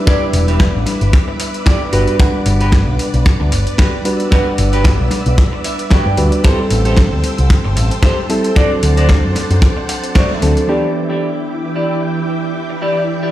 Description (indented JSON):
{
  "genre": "nu-disco, nu disco",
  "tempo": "113 BPM",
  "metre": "4/4",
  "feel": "swing 55% on 16ths",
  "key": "E minor",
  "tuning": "A4 = 440 Hz",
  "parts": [
    { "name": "reed electric piano", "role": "accompaniment", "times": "0.0-13.3 s", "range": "E3 to F#5", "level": "-20 LUFS", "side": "right 1 dB", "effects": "tape echo" },
    { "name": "string machine, full ensemble", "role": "sustained chords", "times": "0.0-13.3 s", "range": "E3 to E6", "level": "-23 LUFS", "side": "equal", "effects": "ensemble chorus, sidechain pumping" },
    { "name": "clean electric guitar", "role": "riff", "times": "0.1-13.3 s", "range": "E4 to G5", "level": "-22 LUFS", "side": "equal", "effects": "wide subtle chorus, low-pass filter, tape echo" },
    { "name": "dusty soul sampler-style drum kit", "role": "drums", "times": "0.1-10.7 s", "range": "hi-hat, snare drum", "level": "-23 LUFS", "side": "equal", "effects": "overdrive" },
    { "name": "kick drum", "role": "drums", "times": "0.1-10.3 s", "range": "none", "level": "-12 LUFS", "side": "equal", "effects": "none" },
    { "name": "picked electric bass with an envelope filter", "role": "bass", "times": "0.3-10.5 s", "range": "E1 to G2", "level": "-14 LUFS", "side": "equal", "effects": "sidechain pumping" }
  ],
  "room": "light reverb",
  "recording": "played on a big sound system in a bare room, stone room reverb",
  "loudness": "-12 LUFS",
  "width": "side -14 dB against mid",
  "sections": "0.0-10.7 A section; 10.7-13.3 B section",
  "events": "clean electric guitar fill 5.4-6.4, 9.6-10.7; band accent 10.2",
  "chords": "0.0 Em7; 1.9 Gmaj7; 6.4 Am7; 8.6 D7; 10.7 Em7"
}